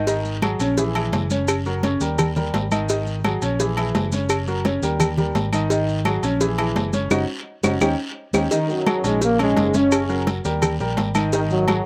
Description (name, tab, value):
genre	latin, salsa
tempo	171 BPM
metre	4/4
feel	straight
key	unclear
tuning	A4 = 441 Hz
part	warm concert grand piano	accompaniment	0.0-11.8 s	C#3 to D#5	-26 LUFS	equal	none
part	fingered electric bass	bass	0.0-11.8 s	F#1 to D#2	-28 LUFS	equal	none
part	congas	percussion	0.1-11.9 s	none	-28 LUFS	equal	none
part	cowbell	percussion	0.1-11.9 s	none	-28 LUFS	equal	none
part	guiro	percussion	0.1-11.9 s	none	-40 LUFS	equal	none
part	maracas	percussion	0.1-11.9 s	none	-36 LUFS	equal	none
part	claves	percussion	0.4-11.9 s	none	-32 LUFS	equal	none
part	timbales and agogo bells	percussion	0.4-11.9 s	none	-31 LUFS	equal	none
part	dark trombone section	melody	8.5-11.8 s	F#2 to D#4	-23 LUFS	equal	none
room	little or no reverb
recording	recorded outdoors, with no room sound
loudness	-21 LUFS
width	mono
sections	0.0-8.5 A section; 8.5-11.9 B section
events	band accent 7.1-8.5; drum fill 8.0-8.5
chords	0.1 G#5; 0.8 A#m7b5; 1.5 F#6; 2.2 D#; 2.9 G#5; 3.6 A#m7b5; 4.3 F#6; 5.0 D#; 5.7 G#5; 6.4 A#m7b5; 7.1 F#5; 7.8 D#7; 8.5 G#5; 9.2 F#add9; 9.9 F#6; 10.6 D#; 11.3 G#5